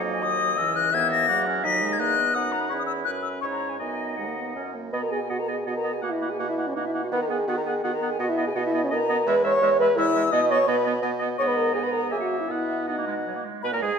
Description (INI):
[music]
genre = quick classical-period movement for wind quintet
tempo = 167 BPM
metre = 3/4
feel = rubato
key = B major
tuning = A4 = 437 Hz
[part]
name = silver concert flute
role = melody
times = 0.0-14.0 s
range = C#5 to B6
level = -28 LUFS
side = left 8 dB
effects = none
[part]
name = warm oboe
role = second line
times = 0.0-14.0 s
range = G#4 to F#5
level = -31 LUFS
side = left 2 dB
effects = none
[part]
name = bright clarinet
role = accompaniment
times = 0.0-14.0 s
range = F#3 to B4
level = -31 LUFS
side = right 8 dB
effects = none
[part]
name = mellow French horn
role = accompaniment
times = 0.0-13.9 s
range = E3 to D#5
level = -26 LUFS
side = equal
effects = none
[part]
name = clear bassoon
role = bass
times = 0.0-14.0 s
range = C#2 to D#3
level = -31 LUFS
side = right 3 dB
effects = none
[sound]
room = moderate scoring stage reverb, RT60 1.9 s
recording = minimal, uncompressed stereo recording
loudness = -22 LUFS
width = side -6 dB against mid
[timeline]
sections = 0.0-4.9 A section; 4.9-13.6 B section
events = none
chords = 0.0 D#m; 0.6 F#7/C#; 1.6 B/D#; 2.7 C#m7/E; 3.8 B/F#; 4.6 F#; 4.9 B; 6.0 F#/B; 7.1 B/D#; 8.2 B; 9.3 E; 10.3 B; 11.4 G#m; 12.1 F#7; 12.5 B